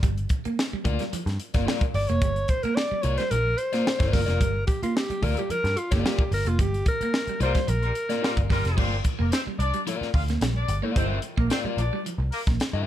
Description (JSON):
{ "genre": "funk", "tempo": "110 BPM", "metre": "4/4", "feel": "straight", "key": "G minor", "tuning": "A4 = 440 Hz", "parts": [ { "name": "clean electric guitar", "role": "riff", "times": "0.0-12.6 s", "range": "F3 to Bb3", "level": "-32 LUFS", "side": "right 4 dB", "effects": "spring reverb" }, { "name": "vintage muted picked electric bass", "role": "bass", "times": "0.0-12.8 s", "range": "F1 to G2", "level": "-26 LUFS", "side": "equal", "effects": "none" }, { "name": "crisp fusion drum kit", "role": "drums", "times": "0.0-12.7 s", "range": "crash cymbal, hi-hat, kick drum, snare drum", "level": "-26 LUFS", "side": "equal", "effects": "none" }, { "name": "crunchy overdriven guitar", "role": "accompaniment", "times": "0.8-12.9 s", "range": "F4 to E5", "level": "-32 LUFS", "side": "left 8 dB", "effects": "spring reverb" }, { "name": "breathy alto saxophone", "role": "melody", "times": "1.9-8.5 s", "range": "F4 to D5", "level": "-27 LUFS", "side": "equal", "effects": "none" }, { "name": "warm horn section", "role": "second line", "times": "7.4-12.4 s", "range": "G3 to F5", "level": "-31 LUFS", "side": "left 1 dB", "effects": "none" } ], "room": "light reverb", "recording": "none", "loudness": "-22 LUFS", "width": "side -12 dB against mid", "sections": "0.0-8.8 A section; 8.8-12.9 B section", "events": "alto saxophone solo 0.0-8.8; band accent 6.6-8.8", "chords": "0.0 Gm7" }